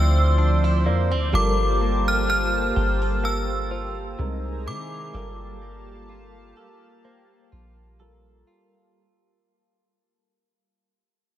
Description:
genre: contemporary R&B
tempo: 63 BPM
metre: 4/4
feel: swing 54% on 16ths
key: G dorian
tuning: A4 = 440 Hz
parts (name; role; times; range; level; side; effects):
- synth chime; melody; 0.0-8.0 s; D6 to F6; -27 LUFS; right 1 dB; ensemble chorus, diffuse ambient delay
- soft electric-piano-like synth keys; accompaniment; 0.0-9.0 s; C3 to Bb4; -32 LUFS; left 1 dB; chorus, phaser
- chorused pulse-width pad; sustained chords; 0.0-8.9 s; F3 to C6; -29 LUFS; equal; none
- direct-recorded clean electric guitar; arpeggios; 0.0-9.6 s; C3 to A4; -33 LUFS; right 4 dB; wide subtle chorus
- soft 808-style bass; bass; 0.0-8.4 s; G1 to D#3; -23 LUFS; equal; none
- soft round pluck; texture; 0.9-8.8 s; C5 to D5; -39 LUFS; left 1 dB; none
room: moderate cathedral reverb, RT60 5.6 s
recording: dreamy mix soaked in reverb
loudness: -20 LUFS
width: side -12 dB against mid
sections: 0.0-9.0 A section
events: fade-out 0.0-9.0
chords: 0.0 Dm9; 1.3 Gm9; 4.2 C7alt; 5.1 Gm9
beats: 0.38 | 1.33 2.29 3.24 4.19 | 5.14 6.09 7.05 8.00

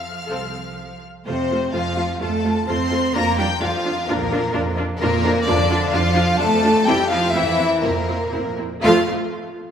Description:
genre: quick classical-period movement for string orchestra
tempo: 127 BPM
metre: 4/4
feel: rubato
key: F major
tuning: A4 = 439 Hz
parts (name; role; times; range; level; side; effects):
- warm chamber violin section; melody; 0.0-9.1 s; F4 to F6; -23 LUFS; left 3 dB; none
- clear chamber violin section; second line; 0.0-9.1 s; Bb3 to F5; -25 LUFS; left 2 dB; none
- clear chamber cello section; bass; 0.0-9.1 s; Bb2 to C4; -24 LUFS; right 2 dB; none
- clear symphonic viola section; accompaniment; 0.3-9.1 s; A3 to A4; -24 LUFS; right 1 dB; none
- clear chamber double bass section; bass; 0.3-9.1 s; C2 to F2; -26 LUFS; right 2 dB; none
room: wet scoring stage reverb, RT60 2.1 s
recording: none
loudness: -17 LUFS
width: side -8 dB against mid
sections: 0.0-1.3 A section; 1.3-8.8 B section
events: slowing down 4.1-8.8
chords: 0.0 F; 3.2 Bb/F; 6.9 C7/F; 8.8 F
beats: 0.30 0.79 | 1.27 1.74 2.21 2.69 | 3.15 3.62 4.09 4.55 | 5.01 5.47 5.93 6.40 | 6.87 7.34 7.83 8.32 | 8.83

